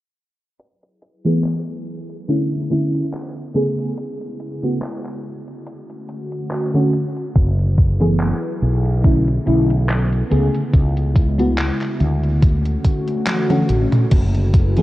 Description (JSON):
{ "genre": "vaporwave", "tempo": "71 BPM", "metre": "4/4", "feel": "swing 55% on 16ths", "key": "unclear", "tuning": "A4 = 440 Hz", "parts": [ { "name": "warbly tape-like pad", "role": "sustained chords", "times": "1.7-14.8 s", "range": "C#3 to B4", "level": "-26 LUFS", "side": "equal", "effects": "chorus, built-in reverb" }, { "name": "gated 80s digital drum machine", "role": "drums", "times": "0.6-14.8 s", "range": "crash cymbal, handclaps, hi-hat, toms", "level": "-24 LUFS", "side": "equal", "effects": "gated reverb, overdrive" }, { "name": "FM electric piano with soft pad layer", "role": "accompaniment", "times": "1.2-14.8 s", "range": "C#3 to G#4", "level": "-20 LUFS", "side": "equal", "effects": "tremolo, wide subtle chorus, analog delay" }, { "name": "fretless electric bass", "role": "bass", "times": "7.4-14.8 s", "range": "F#1 to D2", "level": "-18 LUFS", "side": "equal", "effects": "lush chorus" }, { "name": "electronic kick drum", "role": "drums", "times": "7.4-14.7 s", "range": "none", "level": "-14 LUFS", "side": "equal", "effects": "overdrive" } ], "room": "light reverb", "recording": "worn, warbling old tape, cassette tape, warbly pitch drift, low-pass filter", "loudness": "-16 LUFS", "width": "side -16 dB against mid", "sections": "0.6-14.1 A section", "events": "filter sweep on ambient pad 0.6-14.1; filter sweep 0.6-14.1; drum fill 13.3-14.1", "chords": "0.6 F#m11; 2.3 Bm11; 3.6 Amaj9/C#; 5.2 Dmaj7; 7.4 F#m11; 9.0 Bm11; 10.3 Amaj9/C#; 12.0 Dmaj7; 14.1 F#m11" }